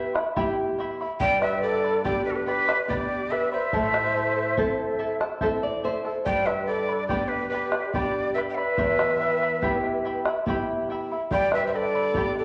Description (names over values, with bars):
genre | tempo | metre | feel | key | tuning
andean folk, Andean ensemble | 71 BPM | 3/4 | straight | unclear | A4 = 437 Hz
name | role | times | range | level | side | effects
breathy bright quena | melody | 0.0-12.4 s | A4 to G5 | -29 LUFS | equal | none
large quena | second line | 0.0-12.4 s | F#4 to E5 | -30 LUFS | equal | none
charango | accompaniment | 0.0-12.4 s | E4 to B5 | -33 LUFS | equal | none
nylon-string guitar | accompaniment | 0.0-12.4 s | E2 to E5 | -33 LUFS | equal | none
bombo | percussion | 0.2-12.4 s | none | -34 LUFS | equal | none
room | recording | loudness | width
wet large studio reverb, RT60 1.3 s | none | -25 LUFS | mono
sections
0.0-12.4 A section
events
nylon-string guitar fill 5.0-6.3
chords
0.0 Em; 1.2 G; 3.7 Am; 6.3 G; 8.8 Em; 11.3 G